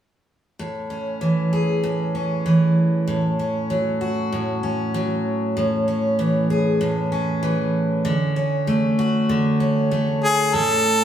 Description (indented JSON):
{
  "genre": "pop",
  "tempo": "96 BPM",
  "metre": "4/4",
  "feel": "swing 55% on 16ths",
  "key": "A major",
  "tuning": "A4 = 443 Hz",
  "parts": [
    { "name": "picked steel-string acoustic guitar", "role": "accompaniment", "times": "0.6-11.0 s", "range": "A2 to G#4", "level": "-19 LUFS", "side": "equal", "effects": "none" },
    { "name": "bright harmonica", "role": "melody", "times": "10.2-11.0 s", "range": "G#4 to A4", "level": "-16 LUFS", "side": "left 1 dB", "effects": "none" }
  ],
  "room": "wet stone room reverb, RT60 1.2 s",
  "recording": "band playing live in one room",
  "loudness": "-18 LUFS",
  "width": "side -9 dB against mid",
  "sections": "0.6-10.5 A section",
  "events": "none",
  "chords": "0.6 Amaj7; 3.1 F#m/A; 5.6 Amaj7; 8.1 Dmaj7; 10.5 A"
}